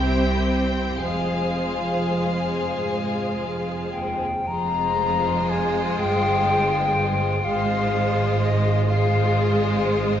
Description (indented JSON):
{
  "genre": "classical, slow romantic movement for symphony orchestra",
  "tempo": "34-42 BPM (dotted quarters)",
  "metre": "6/8",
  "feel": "rubato",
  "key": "F minor",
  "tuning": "A4 = 439 Hz",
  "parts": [
    { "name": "rich chamber violin section", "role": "melody", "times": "0.0-10.2 s", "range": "C5 to G5", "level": "-32 LUFS", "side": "left 2 dB", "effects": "none" },
    { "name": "rich chamber violin section", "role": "second line", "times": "0.0-10.2 s", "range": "E4 to C5", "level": "-29 LUFS", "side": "left 2 dB", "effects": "none" },
    { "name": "rich chamber viola section", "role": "accompaniment", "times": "0.0-10.2 s", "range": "Ab3 to G4", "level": "-26 LUFS", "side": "left 1 dB", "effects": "none" },
    { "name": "dark chamber cello section", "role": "bass", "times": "0.0-10.2 s", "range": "C2 to Ab2", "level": "-27 LUFS", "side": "right 2 dB", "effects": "none" },
    { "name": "dark chamber double bass section", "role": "bass", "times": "0.0-10.2 s", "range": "F1 to C2", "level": "-27 LUFS", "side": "right 2 dB", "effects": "none" },
    { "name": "concert flute", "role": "second line", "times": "3.9-9.9 s", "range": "Eb5 to Bb5", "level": "-24 LUFS", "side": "left 4 dB", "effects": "none" }
  ],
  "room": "wet recital hall reverb, RT60 1.3 s",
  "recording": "recorded in a church or concert hall, nothing above 7.7 kHz",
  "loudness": "-20 LUFS",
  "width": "side -10 dB against mid",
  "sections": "0.0-4.5 A section; 4.5-10.2 A section",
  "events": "none",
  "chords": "0.0 C; 1.0 Fm; 7.4 Fm/Ab"
}